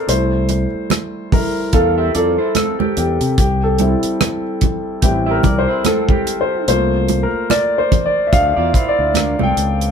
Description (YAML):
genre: lush 1970s-style soul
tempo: 73 BPM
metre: 4/4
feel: swing 58% on 16ths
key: unclear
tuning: A4 = 440 Hz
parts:
  - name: warm concert grand piano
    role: accompaniment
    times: 0.0-9.9 s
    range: E3 to G5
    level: -17 LUFS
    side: left 1 dB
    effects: none
  - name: electric guitar through a small old amp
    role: riff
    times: 0.0-9.9 s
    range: C4 to F5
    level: -22 LUFS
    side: right 5 dB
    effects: none
  - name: worn celesta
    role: texture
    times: 0.0-7.0 s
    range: E6 to G6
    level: -31 LUFS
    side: left 2 dB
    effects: none
  - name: fingered electric bass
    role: bass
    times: 0.1-9.9 s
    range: A1 to C3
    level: -19 LUFS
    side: equal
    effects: none
  - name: damped 70s drum kit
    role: drums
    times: 0.1-9.9 s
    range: hi-hat, kick drum, rim click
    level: -18 LUFS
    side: equal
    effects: none
  - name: congas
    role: percussion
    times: 0.5-9.6 s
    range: none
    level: -21 LUFS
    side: right 4 dB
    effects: none
room: moderate small room reverb, RT60 0.5 s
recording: band playing live in one room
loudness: -14 LUFS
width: side -7 dB against mid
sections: 0.0-9.9 A section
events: grand piano solo 0.0-9.9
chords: 0.1 Fmaj9/C; 3.4 Am7; 6.7 Gm9/C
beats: | 0.08 0.91 1.73 2.56 | 3.38 4.21 5.03 5.86 | 6.68 7.50 8.33 9.15